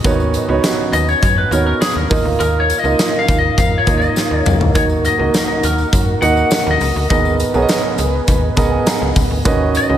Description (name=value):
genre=1980s-style pop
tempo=102 BPM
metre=4/4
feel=straight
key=Eb minor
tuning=A4 = 440 Hz
part: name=warm grand piano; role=accompaniment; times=0.0-10.0 s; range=D#3 to Bb5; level=-18 LUFS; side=right 4 dB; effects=none
part: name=mellow large flute ensemble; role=sustained chords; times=0.0-10.0 s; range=C#4 to Gb5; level=-25 LUFS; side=equal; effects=none
part: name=slap-like FM bass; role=bass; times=0.0-10.0 s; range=Cb2 to F#2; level=-18 LUFS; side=equal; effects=none
part: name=huge arena drum kit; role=drums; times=0.0-9.9 s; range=hi-hat, kick drum, snare drum, tambourine, toms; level=-18 LUFS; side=left 1 dB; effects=none
part: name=tambourine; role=percussion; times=0.0-9.9 s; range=none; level=-34 LUFS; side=left 8 dB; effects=none
part: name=lightly driven lead guitar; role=melody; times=0.9-10.0 s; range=Ab4 to Gb5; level=-19 LUFS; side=left 3 dB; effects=none
room=light reverb, small room ambience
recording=none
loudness=-13 LUFS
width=side -10 dB against mid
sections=0.0-10.0 A section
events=lead electric guitar solo 0.0-10.0; drum fill 4.2-4.8; grand piano fill 8.3-9.5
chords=0.0 Badd9; 2.1 Bbsus4; 4.8 Ebm; 7.1 Abmadd9; 9.5 Badd9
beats=| 0.05 0.64 1.23 1.81 | 2.40 2.99 3.58 4.17 | 4.75 5.34 5.93 6.52 | 7.11 7.70 8.28 8.87 | 9.46